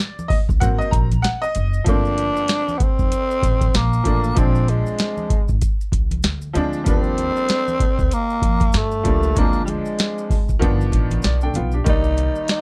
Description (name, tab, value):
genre	hip hop, jazz-hop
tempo	96 BPM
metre	4/4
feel	swing 59% on 16ths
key	G minor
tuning	A4 = 440 Hz
part	bright upright piano	accompaniment	0.0-12.6 s	Eb3 to Bb5	-27 LUFS	equal	none
part	maracas and congas	percussion	0.0-12.6 s	none	-36 LUFS	equal	none
part	booming analog drum machine	drums	0.3-12.6 s	hi-hat, kick drum, snare drum	-22 LUFS	equal	vintage 12-bit sampler grit
part	upright bass	bass	0.5-12.3 s	F1 to G2	-24 LUFS	equal	none
part	growling tenor saxophone	melody	1.9-12.6 s	G3 to Eb4	-24 LUFS	equal	none
room	little or no reverb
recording	none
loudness	-19 LUFS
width	mono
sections	0.0-1.9 A section; 1.9-12.6 B section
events	upright piano solo 0.0-1.9; upright piano fill 10.9-11.9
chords	0.0 N.C.; 0.6 Ab9; 1.9 Gm11; 4.4 Bb9; 6.9 Ebmaj9; 9.4 Dm7b5; 10.6 G7b13; 11.9 Cm9